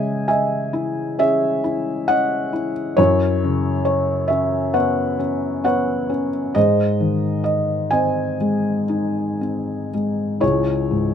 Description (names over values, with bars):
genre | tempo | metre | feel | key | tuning
classical, lyrical solo piano | 56-69 BPM | 4/4 | rubato | C# minor | A4 = 436 Hz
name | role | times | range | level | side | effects
felt-muted upright piano | solo | 0.0-11.1 s | C#2 to G#5 | -18 LUFS | left 1 dB | none
room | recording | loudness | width
little or no reverb | close, detailed microphones | -18 LUFS | side -8 dB against mid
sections
0.0-10.4 A section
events
none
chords
0.0 C#madd9; 3.0 F#7sus4; 6.6 G#; 10.4 C#m